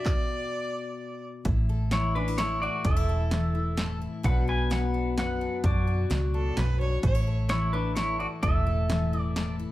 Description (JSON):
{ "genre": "honky-tonk and classic country", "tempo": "129 BPM", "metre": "3/4", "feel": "straight", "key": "A major", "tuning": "A4 = 439 Hz", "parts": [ { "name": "rich fiddle", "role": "second line", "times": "0.0-1.2, 6.3-7.4 s", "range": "A4 to D5", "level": "-34 LUFS", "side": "right 1 dB", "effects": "none" }, { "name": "picked steel-string acoustic guitar", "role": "accompaniment", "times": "0.0-9.7 s", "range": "F#2 to A4", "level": "-33 LUFS", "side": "left 4 dB", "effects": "none" }, { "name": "punchy analog drum machine", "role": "drums", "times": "0.1-9.5 s", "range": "handclaps, hi-hat, kick drum, snare drum", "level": "-29 LUFS", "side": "equal", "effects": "none" }, { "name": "vintage muted fingered electric bass", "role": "bass", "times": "1.5-9.6 s", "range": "E1 to F#2", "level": "-27 LUFS", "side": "equal", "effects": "none" }, { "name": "pedal steel guitar", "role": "melody", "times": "1.9-9.6 s", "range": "D4 to G#5", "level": "-30 LUFS", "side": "equal", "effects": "none" } ], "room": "light reverb", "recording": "none", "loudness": "-24 LUFS", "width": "side -15 dB against mid", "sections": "0.0-1.5 A section; 1.5-9.7 B section", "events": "fiddle solo 0.0-1.5; stop 0.1-1.5", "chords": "0.0 Bm; 1.5 A5; 4.2 Bm; 7.0 A", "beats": "| 0.06 0.52 0.99 | 1.45 1.92 2.38 | 2.85 3.31 3.78 | 4.24 4.71 5.17 | 5.64 6.10 6.57 | 7.03 7.50 7.96 | 8.43 8.89 9.36" }